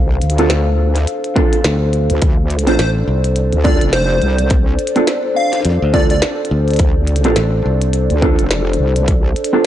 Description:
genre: glitch hop.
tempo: 105 BPM.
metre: 4/4.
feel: swing 59% on 16ths.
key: D minor.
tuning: A4 = 439 Hz.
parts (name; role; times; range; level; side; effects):
dark analog pad; sustained chords; 0.0-9.7 s; D4 to F5; -20 LUFS; left 1 dB; chorus, phaser, vintage 12-bit sampler grit, sidechain pumping.
wobble bass; bass; 0.0-9.3 s; F1 to D2; -16 LUFS; equal; chorus, overdrive.
glitchy drum kit; drums; 0.2-9.6 s; hi-hat, snare drum; -21 LUFS; equal; none.
mellow electric guitar; stabs; 0.4-9.6 s; C4 to A4; -19 LUFS; right 2 dB; spring reverb, sidechain pumping, analog delay.
electronic kick drum; drums; 1.4-9.2 s; none; -15 LUFS; equal; overdrive.
fingered electric bass; bass; 1.6-8.1 s; A1 to F2; -15 LUFS; equal; transformer saturation.
plucky unison lead; melody; 2.7-6.2 s; C5 to F5; -20 LUFS; equal; analog delay.
room: light reverb.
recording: dry, gritty hardware recording, transformer saturation, nothing above 10.5 kHz.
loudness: -12 LUFS.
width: side -12 dB against mid.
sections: 0.0-9.7 A section.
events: none.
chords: 0.0 Dm7.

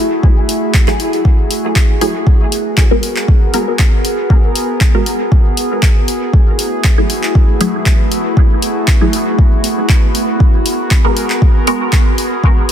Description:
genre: dub techno.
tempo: 118 BPM.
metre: 4/4.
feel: swing 53% on 16ths.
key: unclear.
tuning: A4 = 440 Hz.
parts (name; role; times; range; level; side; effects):
warbly tape-like pad; sustained chords; 0.0-12.7 s; A3 to B4; -18 LUFS; equal; chorus, built-in reverb, sidechain pumping.
electronic kick drum; drums; 0.2-12.5 s; none; -10 LUFS; equal; overdrive.
deep house drum kit; drums; 0.5-12.7 s; handclaps, hi-hat; -20 LUFS; left 1 dB; none.
filtered dub chord stab; stabs; 0.9-11.8 s; F#3 to A#4; -20 LUFS; equal; phaser, sidechain pumping, dub echo.
wind-like tuned noise texture; texture; 2.7-12.7 s; B3; -25 LUFS; right 2 dB; built-in reverb, sidechain pumping.
room: light reverb, digital ambience.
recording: dense, heavily limited modern master.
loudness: -10 LUFS.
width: side -9 dB against mid.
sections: 0.0-12.7 A section.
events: filter sweep on synth stab 0.0-12.7.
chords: 0.0 F#m9; 2.3 G#m9; 6.3 F#m9; 10.4 G#m9.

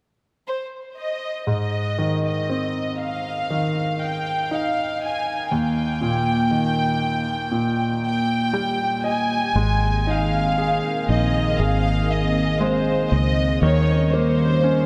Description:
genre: pop ballad.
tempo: 59 BPM.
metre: 4/4.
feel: straight.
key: Ab major.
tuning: A4 = 440 Hz.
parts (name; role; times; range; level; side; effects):
warm studio violin section; melody; 0.5-14.9 s; C5 to Ab5; -27 LUFS; equal; none.
clear concert grand piano; accompaniment; 1.5-14.9 s; Eb2 to G5; -26 LUFS; equal; none.
sweeping resonant pad; sustained chords; 9.6-14.9 s; Eb3 to Ab4; -25 LUFS; equal; chorus.
fingered electric bass; bass; 9.6-14.9 s; Ab1 to Eb2; -25 LUFS; equal; none.
room: wet huge ambient reverb, RT60 9.2 s.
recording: dreamy mix soaked in reverb.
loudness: -22 LUFS.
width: mono.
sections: 0.0-1.5 A section; 1.5-9.6 B section; 9.6-14.9 C section.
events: grand piano fill 8.0-9.6.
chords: 0.0 N.C.; 1.5 Ab; 5.5 Eb; 9.6 Abadd9; 13.6 Eb7.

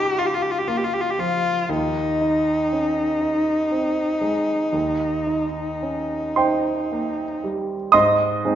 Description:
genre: classical, romantic duo for cello and grand piano.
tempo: 36-41 BPM (dotted quarters).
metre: 12/8.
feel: rubato.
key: Ab major.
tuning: A4 = 440 Hz.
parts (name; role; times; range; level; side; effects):
rich cello; melody; 0.0-7.4 s; Eb4 to G4; -22 LUFS; left 1 dB; none.
clear grand piano; accompaniment; 0.0-8.6 s; Db2 to Eb6; -22 LUFS; right 3 dB; none.
room: wet recital hall reverb, RT60 1.6 s.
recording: nothing above 7.6 kHz.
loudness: -19 LUFS.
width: side -10 dB against mid.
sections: 0.0-7.9 A section.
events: none.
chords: 0.0 Bbm/Db; 1.7 Ab/Eb; 4.7 Eb; 7.9 Ab.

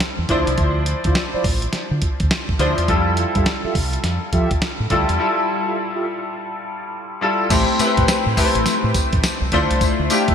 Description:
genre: R&B, new jack swing.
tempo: 104 BPM.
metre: 4/4.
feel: swing 63% on 16ths.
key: A minor.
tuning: A4 = 440 Hz.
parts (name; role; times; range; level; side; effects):
clear concert grand piano; accompaniment; 0.0-10.3 s; F3 to C5; -20 LUFS; left 2 dB; ensemble chorus.
dusty soul sampler-style drum kit; drums; 0.0-10.3 s; crash cymbal, hi-hat, kick drum, snare drum, tambourine; -21 LUFS; equal; none.
deep dub fingered electric bass; bass; 0.2-10.3 s; A1 to F3; -22 LUFS; equal; none.
mellow synth brass; stabs; 0.3-6.1 s; E4 to E5; -27 LUFS; right 3 dB; chorus.
room: moderate lush hall reverb, RT60 2.5 s.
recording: bright 1980s-style digital production.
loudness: -16 LUFS.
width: side -8 dB against mid.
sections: 0.0-7.5 A section; 7.5-10.3 B section.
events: break 5.2-7.5.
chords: 0.3 Dm9; 2.9 Fmaj9; 7.5 Am7; 9.5 Dm9.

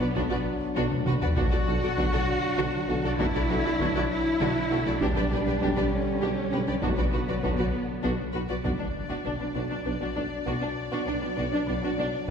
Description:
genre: cinematic, hybrid orchestral and electronic film score.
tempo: 66 BPM (dotted quarters).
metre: 6/8.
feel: straight.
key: B minor.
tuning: A4 = 440 Hz.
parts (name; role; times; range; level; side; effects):
rich studio violin section; melody; 0.0-12.3 s; F#4 to D5; -37 LUFS; left 5 dB; none.
warm symphonic violin section; second line; 0.0-12.1 s; B3 to B4; -36 LUFS; left 3 dB; none.
rich symphonic viola section; accompaniment; 0.0-12.0 s; D4 to G4; -34 LUFS; right 2 dB; none.
mellow French horn section; sustained chords; 0.0-12.3 s; D3 to D4; -33 LUFS; left 2 dB; none.
tight sequenced synth; arpeggios; 0.0-12.3 s; D3 to B4; -38 LUFS; left 1 dB; none.
rich symphonic double bass section; bass; 0.0-12.0 s; B1; -34 LUFS; right 2 dB; none.
warm symphonic cello section; bass; 0.0-12.3 s; B2 to F#4; -31 LUFS; equal; none.
warm tuba; bass; 0.2-12.0 s; B1; -35 LUFS; right 4 dB; none.
taiko ensemble; drums; 0.2-10.3 s; none; -31 LUFS; equal; none.
impact; sound effects; 8.6-10.5 s; none; -37 LUFS; equal; none.
room: wet scoring stage reverb, RT60 1.7 s.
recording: heard from further back in the room.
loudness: -24 LUFS.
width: side -7 dB against mid.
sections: 0.0-8.6 A section; 8.6-12.3 B section.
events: drum fill 0.9-1.4; impact 8.6-10.5.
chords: 0.0 Bm; 1.4 D/B; 5.0 G/B; 6.8 Bm.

